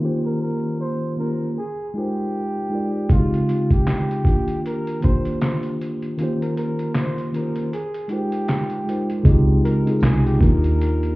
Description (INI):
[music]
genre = lo-fi hip hop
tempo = 78 BPM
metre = 4/4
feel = swing 58% on 16ths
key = Eb major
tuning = A4 = 440 Hz
[part]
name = mellow tine electric piano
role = accompaniment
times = 0.0-11.2 s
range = Db3 to D5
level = -22 LUFS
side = equal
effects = medium stereo tremolo, cassette tape, low-pass filter
[part]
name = breathy flugelhorn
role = melody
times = 0.3-11.2 s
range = F4 to C5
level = -29 LUFS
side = equal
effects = low-pass filter
[part]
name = lo-fi sampler-style drum kit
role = drums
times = 3.1-11.2 s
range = handclaps, hi-hat, kick drum, snare drum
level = -18 LUFS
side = equal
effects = overdrive
[part]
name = vintage muted fingered electric bass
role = bass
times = 9.2-11.1 s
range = C2 to Eb2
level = -18 LUFS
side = equal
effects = none
[part]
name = tambourine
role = percussion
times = 10.0-10.2 s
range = none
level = -64 LUFS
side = left 4 dB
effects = none
[sound]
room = digital ambience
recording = heard muffled through a wall, club reverb, vinyl crackle, EQ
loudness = -19 LUFS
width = side -20 dB against mid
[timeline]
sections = 0.0-9.2 A section; 9.2-11.2 B section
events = filter sweep 0.0-9.2; break 6.2-9.2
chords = 0.0 Eb13; 1.6 Ab69; 3.1 Dbmaj9#11; 4.2 Ebmaj9; 6.2 Eb13; 7.7 Ab69; 9.2 Dbmaj9#11; 10.4 Ebmaj9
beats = | 0.02 0.79 1.56 2.33 | 3.10 3.86 4.63 5.40 | 6.17 6.94 7.71 8.48 | 9.25 10.02 10.79